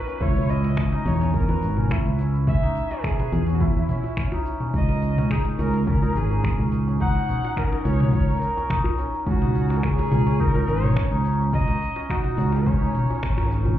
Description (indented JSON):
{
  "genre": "organic downtempo",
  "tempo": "106 BPM",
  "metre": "4/4",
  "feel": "straight",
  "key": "unclear",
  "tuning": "A4 = 440 Hz",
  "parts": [
    { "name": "rich kamancheh", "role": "melody", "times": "0.0-13.5 s", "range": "E4 to F#5", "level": "-30 LUFS", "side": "right 1 dB", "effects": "vintage 12-bit sampler grit, tape echo" },
    { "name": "santur", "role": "arpeggios", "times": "0.0-13.8 s", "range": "C#4 to B4", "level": "-30 LUFS", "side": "left 1 dB", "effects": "tape echo" },
    { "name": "organic electronic drum kit", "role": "drums", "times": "0.1-13.8 s", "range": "finger snaps, hi-hat, shaker, toms", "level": "-28 LUFS", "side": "equal", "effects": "none" },
    { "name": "djembe", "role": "percussion", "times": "0.1-13.8 s", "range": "none", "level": "-33 LUFS", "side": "left 1 dB", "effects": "none" },
    { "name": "fretless electric bass", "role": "bass", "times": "0.2-13.7 s", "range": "G#1 to E2", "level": "-22 LUFS", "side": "equal", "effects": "sidechain pumping" },
    { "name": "electronic kick drum", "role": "drums", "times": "0.2-13.3 s", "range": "none", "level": "-25 LUFS", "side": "equal", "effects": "overdrive" }
  ],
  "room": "light reverb",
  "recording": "heard muffled through a wall, club reverb, EQ",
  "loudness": "-20 LUFS",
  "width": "side -12 dB against mid",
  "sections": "0.0-13.8 A section",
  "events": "band accent 13.2",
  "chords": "0.0 C#m; 4.7 D#7(no3)"
}